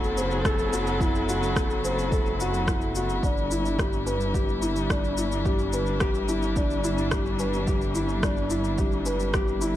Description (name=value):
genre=piano and strings electronica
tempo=108 BPM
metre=4/4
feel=straight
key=E minor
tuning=A4 = 435 Hz
part: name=dark string quartet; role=sustained chords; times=0.0-9.8 s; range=F#3 to A4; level=-30 LUFS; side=left 2 dB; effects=sidechain pumping
part: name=felt-muted upright piano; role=riff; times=0.0-9.8 s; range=D4 to C5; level=-28 LUFS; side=left 1 dB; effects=ping-pong delay
part: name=dark detuned saw bass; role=bass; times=0.0-9.8 s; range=F#1 to G1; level=-30 LUFS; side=equal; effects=sidechain pumping
part: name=electronic shaker and rim click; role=drums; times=0.0-9.7 s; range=none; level=-33 LUFS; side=equal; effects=studio ambience
part: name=electronic kick drum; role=drums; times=0.5-9.5 s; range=none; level=-28 LUFS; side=equal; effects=studio ambience
room=light reverb, small room ambience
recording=dark, warm production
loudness=-23 LUFS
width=side -13 dB against mid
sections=0.0-9.8 A section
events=none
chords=0.0 F#m7b5; 3.2 Em7/G